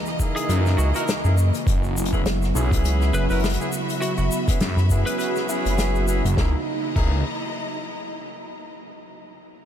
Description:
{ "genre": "glitch hop", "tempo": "102 BPM", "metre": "4/4", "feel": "swing 57% on 16ths", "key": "C# dorian", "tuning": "A4 = 438 Hz", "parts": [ { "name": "warbly tape-like pad", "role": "sustained chords", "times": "0.0-6.7 s", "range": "C#3 to D#5", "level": "-29 LUFS", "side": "right 1 dB", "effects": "chorus, built-in reverb, sidechain pumping" }, { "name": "clear studio string section", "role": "texture", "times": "0.0-8.7 s", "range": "E3 to B5", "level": "-32 LUFS", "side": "equal", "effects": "sidechain pumping" }, { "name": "unplugged drum kit", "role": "drums", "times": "0.1-7.1 s", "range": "crash cymbal, hi-hat, rim click, snare drum", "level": "-31 LUFS", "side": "left 3 dB", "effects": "none" }, { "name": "egg shaker", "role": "percussion", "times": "0.1-6.4 s", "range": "none", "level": "-36 LUFS", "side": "left 4 dB", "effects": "none" }, { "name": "warm horn section", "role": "stabs", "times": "0.2-7.2 s", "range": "A#3 to A#4", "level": "-30 LUFS", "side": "equal", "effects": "vintage 12-bit sampler grit, sidechain pumping, analog delay" }, { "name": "electronic kick drum", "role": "drums", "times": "0.2-7.1 s", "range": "none", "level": "-21 LUFS", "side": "equal", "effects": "none" }, { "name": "lightly driven lead guitar", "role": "melody", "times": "0.4-5.3 s", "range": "F#4 to B4", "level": "-34 LUFS", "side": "equal", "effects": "analog delay" }, { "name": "phased detuned saw bass", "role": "bass", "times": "0.5-7.2 s", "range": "F#1 to F#2", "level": "-22 LUFS", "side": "equal", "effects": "phaser, tube saturation" }, { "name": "rubbery square bass", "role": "bass", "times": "0.8-6.2 s", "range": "F#1 to F#2", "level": "-20 LUFS", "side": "equal", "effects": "none" } ], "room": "moderate huge ambient reverb, RT60 7.9 s", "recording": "dreamy mix soaked in reverb", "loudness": "-19 LUFS", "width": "side -10 dB against mid", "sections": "0.0-6.4 A section; 6.4-8.7 B section", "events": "drop 0.0-6.4", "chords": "0.0 C#m69; 1.7 F#7sus4; 6.4 C#m69" }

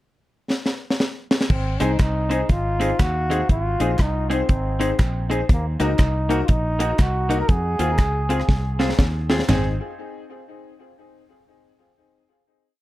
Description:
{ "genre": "ska", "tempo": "120 BPM", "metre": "4/4", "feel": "swing 62% on 8ths", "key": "Ab mixolydian", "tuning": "A4 = 440 Hz", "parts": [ { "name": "deep reggae drum kit", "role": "drums", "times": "0.5-9.6 s", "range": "crash cymbal, hi-hat, kick drum, ride cymbal, rim click, snare drum, toms", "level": "-20 LUFS", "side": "equal", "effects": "none" }, { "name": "clear trombone", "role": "melody", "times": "1.5-9.0 s", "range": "Bb3 to Bb4", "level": "-26 LUFS", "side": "equal", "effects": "tube saturation, tape echo" }, { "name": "fingered electric bass", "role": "bass", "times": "1.5-9.8 s", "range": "Ab1 to F2", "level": "-24 LUFS", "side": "equal", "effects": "none" }, { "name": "semi-hollow electric guitar", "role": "accompaniment", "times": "1.8-9.7 s", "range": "Bb3 to Ab4", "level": "-29 LUFS", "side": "right 3 dB", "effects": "spring reverb" }, { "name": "clear upright piano", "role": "stabs", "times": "1.8-9.7 s", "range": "C4 to C5", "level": "-28 LUFS", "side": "left 4 dB", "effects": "tape echo" }, { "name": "group handclap", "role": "percussion", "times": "2.0-9.8 s", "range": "none", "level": "-39 LUFS", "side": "right 2 dB", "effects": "none" } ], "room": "light reverb", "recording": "none", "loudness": "-18 LUFS", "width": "side -16 dB against mid", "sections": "0.0-1.5 pickup bar; 1.5-9.5 head; 9.5-11.5 final chord", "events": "drum fill 0.5-1.5, 8.5-9.5", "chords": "0.0 N.C.; 1.5 Ab; 5.5 Ebm; 7.5 Fm; 9.5 Ab" }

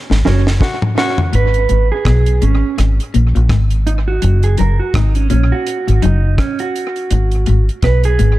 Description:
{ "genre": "roots reggae", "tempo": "83 BPM", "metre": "4/4", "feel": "swing 58% on 16ths", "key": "G# minor", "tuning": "A4 = 439 Hz", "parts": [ { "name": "clean electric guitar", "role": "riff", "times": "0.1-8.3 s", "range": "F#2 to B2", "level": "-19 LUFS", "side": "left 4 dB", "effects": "analog chorus" }, { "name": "deep dub fingered electric bass", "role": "bass", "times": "0.1-8.4 s", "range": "F#1 to B1", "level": "-13 LUFS", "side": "equal", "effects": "none" }, { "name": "deep reggae drum kit", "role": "drums", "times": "0.1-8.4 s", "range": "hi-hat, kick drum, rim click, snare drum, toms", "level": "-19 LUFS", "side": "equal", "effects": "analog delay" }, { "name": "mellow electric guitar", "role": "accompaniment", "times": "0.3-8.4 s", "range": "C#4 to C#5", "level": "-20 LUFS", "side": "right 6 dB", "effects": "spring reverb, dub echo" }, { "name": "growling tenor saxophone", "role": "second line", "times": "0.6-1.2 s", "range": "F#4", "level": "-22 LUFS", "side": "left 3 dB", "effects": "dub echo" } ], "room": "little or no reverb", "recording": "echo-heavy mix", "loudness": "-12 LUFS", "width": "side -16 dB against mid", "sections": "0.0-1.3 A section; 1.3-8.4 B section", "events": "drum fill 0.0-1.3; band accent 0.0-1.3; clean electric guitar solo 1.3-8.4", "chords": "0.0 F#; 1.3 G#m; 4.2 F#; 7.1 G#m" }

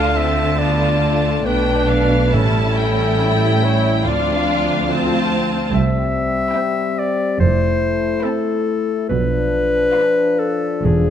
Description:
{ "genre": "classical, slow romantic movement for symphony orchestra", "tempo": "70 BPM", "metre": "4/4", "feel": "rubato", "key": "unclear", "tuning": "A4 = 439 Hz", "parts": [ { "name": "rich symphonic violin section", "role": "melody", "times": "0.0-10.6 s", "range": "F5 to B5", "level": "-26 LUFS", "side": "left 2 dB", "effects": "none" }, { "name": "warm clarinet", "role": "second line", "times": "0.0-11.1 s", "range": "G#4 to F5", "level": "-20 LUFS", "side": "left 2 dB", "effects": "none" }, { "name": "warm symphonic violin section", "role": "second line", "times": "0.0-10.6 s", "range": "D4 to F4", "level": "-25 LUFS", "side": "left 2 dB", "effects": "none" }, { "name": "rich symphonic viola section", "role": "accompaniment", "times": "0.0-10.6 s", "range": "A3 to E4", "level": "-25 LUFS", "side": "right 1 dB", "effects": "none" }, { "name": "dark French horn section", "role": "sustained chords", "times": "0.0-11.1 s", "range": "F3 to E4", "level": "-23 LUFS", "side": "left 4 dB", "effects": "none" }, { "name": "rich chamber double bass section", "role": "bass", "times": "0.0-11.1 s", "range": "E1 to D2", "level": "-21 LUFS", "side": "right 3 dB", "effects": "none" }, { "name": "rich symphonic cello section", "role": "bass", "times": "0.0-11.1 s", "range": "C2 to D3", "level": "-22 LUFS", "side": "right 3 dB", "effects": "none" }, { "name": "timpani", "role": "percussion", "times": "2.3-3.6, 10.8-11.1 s", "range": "E2 to A2", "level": "-24 LUFS", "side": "equal", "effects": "none" } ], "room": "moderate concert hall reverb, RT60 2.2 s", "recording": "close, detailed microphones", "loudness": "-15 LUFS", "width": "side -9 dB against mid", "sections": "0.0-11.1 A section", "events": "none", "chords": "0.0 Dm; 2.3 A7; 4.1 Dm7; 5.7 C; 7.4 Fmaj7; 9.1 Bdim" }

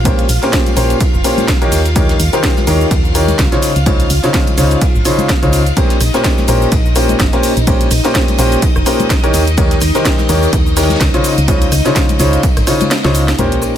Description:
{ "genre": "piano house", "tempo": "126 BPM", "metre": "4/4", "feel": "swing 57% on 16ths", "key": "unclear", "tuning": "A4 = 444 Hz", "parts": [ { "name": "string machine, violins", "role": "sustained chords", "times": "0.0-13.8 s", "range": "Eb4 to F5", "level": "-22 LUFS", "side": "equal", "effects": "ensemble chorus, sidechain pumping" }, { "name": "solid FM bass", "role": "bass", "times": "0.0-13.8 s", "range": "F1 to Eb2", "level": "-15 LUFS", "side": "equal", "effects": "sidechain pumping" }, { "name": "congas and tambourine", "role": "percussion", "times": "0.0-13.7 s", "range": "none", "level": "-25 LUFS", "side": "left 4 dB", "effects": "none" }, { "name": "clear upright piano", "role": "riff", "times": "0.1-13.8 s", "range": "Bb2 to Db5", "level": "-15 LUFS", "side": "left 1 dB", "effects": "sidechain pumping, dub echo" }, { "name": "electronic kick drum", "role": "drums", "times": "0.1-12.5 s", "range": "none", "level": "-15 LUFS", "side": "equal", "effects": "none" }, { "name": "garage drum kit", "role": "drums", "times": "0.1-13.7 s", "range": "hi-hat, rim click, shaker, snare drum", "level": "-19 LUFS", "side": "right 1 dB", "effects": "none" }, { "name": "vintage brush drum kit", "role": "drums", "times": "0.1-13.8 s", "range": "hi-hat, ride cymbal, snare drum", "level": "-27 LUFS", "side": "left 2 dB", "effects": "sidechain pumping on cymbals, high-pass filter on cymbals, low-pass filter on cymbals, sidechain pumping on hats, high-pass filter on hats, low-pass filter on hats, high-pass filter on snare, low-pass filter on snare, high-pass filter on room, low-pass filter on room" }, { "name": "sub drop", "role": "sound effects", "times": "13.4-13.8 s", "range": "none", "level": "-22 LUFS", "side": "right 1 dB", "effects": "none" }, { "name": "airy breathy pad", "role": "texture", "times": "13.4-13.8 s", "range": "F4 to Bb4", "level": "-33 LUFS", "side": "right 3 dB", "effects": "none" } ], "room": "small room reverb", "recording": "none", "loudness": "-10 LUFS", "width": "side -10 dB against mid", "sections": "0.0-13.4 A section", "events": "kick drops out 12.9-13.4; drum fill 13.0-13.4; impact 13.4-13.8", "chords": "0.0 Bbm69; 1.7 Eb7; 3.6 Dbmaj9; 5.8 Bbm69; 9.3 Eb7; 11.2 Dbmaj9" }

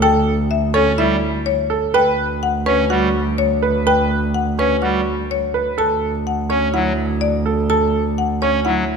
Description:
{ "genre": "classical, minimalist pattern music", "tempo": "125 BPM", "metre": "4/4", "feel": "straight", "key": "D major", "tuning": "A4 = 439 Hz", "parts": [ { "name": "marimba with hard mallets", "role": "melody", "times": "0.0-9.0 s", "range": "A4 to A5", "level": "-21 LUFS", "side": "left 9 dB", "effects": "none" }, { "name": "bright concert grand piano", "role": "arpeggios", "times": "0.0-9.0 s", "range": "E4 to C#5", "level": "-20 LUFS", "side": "right 6 dB", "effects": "none" }, { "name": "clear double bass", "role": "bass", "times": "0.0-9.0 s", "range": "D2", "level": "-20 LUFS", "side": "right 2 dB", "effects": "none" }, { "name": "pipe organ, clarinet reed", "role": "accompaniment", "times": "0.7-8.8 s", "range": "F#3 to C#4", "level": "-23 LUFS", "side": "right 2 dB", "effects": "none" } ], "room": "moderate scoring stage reverb, RT60 1.6 s", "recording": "none", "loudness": "-16 LUFS", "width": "side -5 dB against mid", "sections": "0.0-9.0 A section", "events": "none", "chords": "0.0 Asus4/D; 1.9 Gmaj7/D (rootless); 5.8 Dmaj7" }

